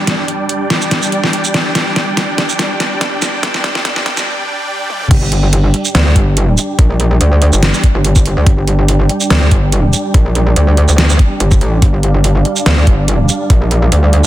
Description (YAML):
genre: heavy wobble dubstep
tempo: 143 BPM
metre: 4/4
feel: swing 54% on 16ths, half-time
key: unclear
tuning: A4 = 440 Hz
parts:
  - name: supersaw chords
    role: sustained chords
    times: 0.0-14.3 s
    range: G3 to G5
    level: -19 LUFS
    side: right 1 dB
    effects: sidechain pumping, low-pass filter
  - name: dubstep drum kit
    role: drums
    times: 0.1-14.3 s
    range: crash cymbal, hi-hat, shaker, snare drum, toms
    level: -16 LUFS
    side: equal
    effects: none
  - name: metallic wobble bass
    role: bass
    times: 5.1-14.3 s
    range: G1 to D2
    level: -11 LUFS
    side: equal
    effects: chorus, overdrive
  - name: electronic kick drum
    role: drums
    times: 5.1-13.6 s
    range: none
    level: -10 LUFS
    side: equal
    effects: none
room: light reverb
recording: dense, heavily limited modern master, high-pass filter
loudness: -10 LUFS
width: side -14 dB against mid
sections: 0.0-5.1 A section; 5.1-14.3 B section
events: build-up 0.0-5.1; drum fill 0.0-4.3, 4.9; filter sweep on supersaw synth 0.0-5.1; break 4.3-5.1; drop 5.1-14.3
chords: 0.0 G5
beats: | 0.07 0.49 0.91 1.33 | 1.75 2.17 2.59 3.01 | 3.43 3.85 4.27 4.69 | 5.11 5.53 5.95 6.37 | 6.79 7.21 7.63 8.04 | 8.46 8.88 9.30 9.72 | 10.14 10.56 10.98 11.40 | 11.82 12.24 12.66 13.08 | 13.50 13.92